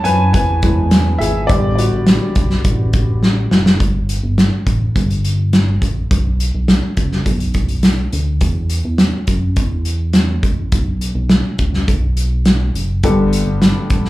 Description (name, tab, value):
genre	piano-driven pop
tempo	104 BPM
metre	4/4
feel	straight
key	unclear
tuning	A4 = 440 Hz
part	warm upright piano	accompaniment	0.0-3.8, 13.0-14.1 s	G2 to A5	-18 LUFS	left 1 dB	slapback echo
part	chorused synth bass	bass	0.0-14.1 s	F#1 to F#2	-17 LUFS	equal	none
part	loose indie drum kit	drums	0.0-14.1 s	hi-hat, kick drum, snare drum	-15 LUFS	equal	none
room	moderate club reverb, RT60 0.7 s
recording	live gig heard through the venue's PA, club reverb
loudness	-13 LUFS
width	side -17 dB against mid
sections	0.0-3.8 A section; 3.8-14.1 B section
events	upright piano solo 0.0-3.8; drum fill 3.2-3.8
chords	0.0 E; 1.5 A7sus4; 3.8 Gsus2; 6.1 N.C.; 10.7 B5; 13.0 Gadd9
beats	0.34 0.92 | 1.50 2.07 2.65 3.23 | 3.80 4.38 4.96 5.53 | 6.11 6.69 7.27 7.84 | 8.42 9.00 9.57 10.15 | 10.73 11.30 11.88 12.46 | 13.04 13.61